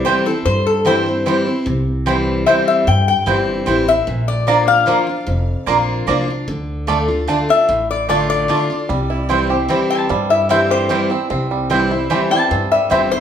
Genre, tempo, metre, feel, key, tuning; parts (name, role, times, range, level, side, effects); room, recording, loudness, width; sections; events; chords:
bluegrass; 149 BPM; 3/4; straight; C mixolydian; A4 = 440 Hz
lap resonator guitar; second line; 0.0-13.2 s; A4 to A5; -16 LUFS; left 4 dB
picked steel-string acoustic guitar; accompaniment; 0.0-13.2 s; F2 to F4; -20 LUFS; left 1 dB
mandolin; stabs; 0.0-13.0 s; A3 to Bb5; -20 LUFS; right 4 dB
upright bass; bass; 0.0-13.2 s; F1 to G2; -22 LUFS; equal
bluegrass banjo; arpeggios; 8.9-13.2 s; E3 to G4; -22 LUFS; right 4 dB
wet large studio reverb, RT60 0.9 s; band playing live in one room; -14 LUFS; side -8 dB against mid
0.0-13.2 A section
resonator guitar played with a steel bar solo 0.0-13.2
0.0 C; 4.1 Bb; 6.5 Dm; 8.9 C